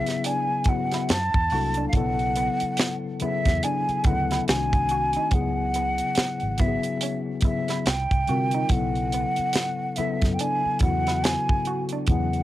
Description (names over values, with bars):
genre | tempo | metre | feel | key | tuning
R&B, neo-soul | 71 BPM | 4/4 | swing 60% on 16ths | B dorian | A4 = 441 Hz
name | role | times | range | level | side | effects
breathy concert flute | melody | 0.0-12.4 s | E5 to A5 | -26 LUFS | right 1 dB | cassette tape
electric guitar through a small old amp | second line | 0.0-12.1 s | B3 to F#4 | -36 LUFS | right 8 dB | spring reverb, cassette tape
mellow tine electric piano | accompaniment | 0.0-12.4 s | C#3 to Bb4 | -28 LUFS | left 5 dB | medium stereo tremolo, cassette tape
tight funk drum kit | drums | 0.1-12.4 s | hi-hat, kick drum, snare drum | -24 LUFS | right 1 dB | cassette tape
vintage muted fingered electric bass | bass | 1.1-12.4 s | G#1 to C3 | -29 LUFS | equal | transformer saturation
room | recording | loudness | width
light reverb | home recording on cassette | -22 LUFS | side -14 dB against mid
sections
0.0-12.4 A section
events
none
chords
0.0 E; 1.1 F#7alt; 1.9 Bm11; 4.5 Cdim7; 5.3 C#m7; 7.8 C9sus4; 8.7 B9sus4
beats
0.24 1.09 | 1.93 2.78 3.62 4.47 | 5.31 6.16 7.00 7.85 | 8.69 9.54 10.38 11.23 | 12.07